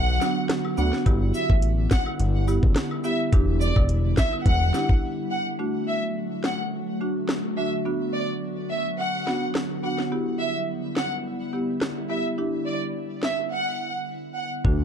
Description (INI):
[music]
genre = dancehall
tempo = 106 BPM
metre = 4/4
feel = straight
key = unclear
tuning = A4 = 439 Hz
[part]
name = warm studio violin section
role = melody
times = 0.0-14.5 s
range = D5 to F#5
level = -29 LUFS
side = right 1 dB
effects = digital delay
[part]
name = glassy FM pad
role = sustained chords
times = 0.0-14.6 s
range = D3 to F#4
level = -31 LUFS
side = equal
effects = ensemble chorus, built-in reverb, sidechain pumping
[part]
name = fat analog bass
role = bass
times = 0.0-4.7, 14.6-14.8 s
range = E1 to D2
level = -23 LUFS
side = equal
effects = none
[part]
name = marimba with medium mallets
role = accompaniment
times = 0.2-14.8 s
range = A3 to G4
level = -30 LUFS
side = right 2 dB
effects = none
[part]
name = island pop drum kit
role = drums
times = 0.2-14.8 s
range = hi-hat, kick drum, rim click, snare drum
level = -24 LUFS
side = equal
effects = none
[part]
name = cabasa and woodblock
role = percussion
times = 0.2-4.9 s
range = none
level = -42 LUFS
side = left 4 dB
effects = none
[sound]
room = little or no reverb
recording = dark, warm production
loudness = -22 LUFS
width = side -8 dB against mid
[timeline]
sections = 0.0-5.6 A section; 5.6-14.6 B section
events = break 5.0-5.6; silent gap 13.5-14.6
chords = 0.0 Bm; 1.1 G6; 3.3 Em7; 5.6 D; 7.9 Bm; 10.1 G6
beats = 0.50 | 1.06 1.63 2.19 2.76 | 3.33 3.89 4.46 5.03 | 5.59 6.16 6.72 7.29 | 7.86 8.42 8.99 9.55 | 10.12 10.69 11.25 11.82 | 12.38 12.95 13.52 14.08 | 14.65